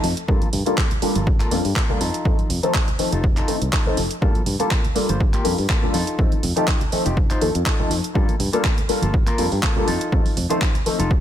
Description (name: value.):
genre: filtered disco house.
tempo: 122 BPM.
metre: 4/4.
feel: swing 55% on 16ths.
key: G minor.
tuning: A4 = 440 Hz.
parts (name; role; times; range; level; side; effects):
clear concert grand piano; accompaniment; 0.0-11.0 s; F3 to A4; -24 LUFS; left 2 dB; phaser, sidechain pumping, low-pass filter.
semi-hollow electric guitar; riff; 0.0-11.1 s; Bb3 to C5; -29 LUFS; left 2 dB; sidechain pumping, low-pass filter.
modern bright fingered electric bass; bass; 0.0-11.2 s; F1 to G2; -24 LUFS; equal; sidechain pumping, low-pass filter.
house drum kit; drums; 0.0-11.1 s; handclaps, hi-hat; -26 LUFS; right 2 dB; sidechain pumping on cymbals, sidechain pumping on hats.
congas and tambourine; percussion; 0.0-11.2 s; none; -32 LUFS; right 3 dB; sidechain pumping on perc, low-pass filter on perc.
electronic kick drum; drums; 0.3-11.2 s; none; -20 LUFS; equal; none.
room: digital ambience.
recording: none.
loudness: -18 LUFS.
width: side -10 dB against mid.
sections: 0.0-11.2 A section.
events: filter sweep 0.0-11.2.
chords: 0.3 Gm9; 2.0 F7; 4.2 Gm9; 5.9 F7; 8.2 Gm9; 9.9 F7.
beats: | 0.29 0.78 1.27 1.76 | 2.25 2.75 3.24 3.73 | 4.22 4.71 5.20 5.70 | 6.19 6.68 7.17 7.66 | 8.15 8.65 9.14 9.63 | 10.12 10.61 11.11.